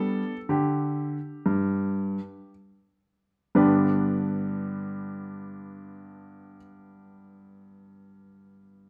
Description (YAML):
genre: classical, baroque-style suite movement for grand piano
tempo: 54-66 BPM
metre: 4/4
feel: rubato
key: G major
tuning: A4 = 441 Hz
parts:
  - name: clear baby grand piano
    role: solo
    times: 0.0-8.9 s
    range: G2 to B4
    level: -27 LUFS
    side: equal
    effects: none
room: moderate large studio reverb, RT60 1.4 s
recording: none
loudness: -26 LUFS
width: mono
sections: 0.0-3.6 A section; 3.6-7.9 B section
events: slowing down 0.0-3.6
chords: 0.0 G5; 3.6 G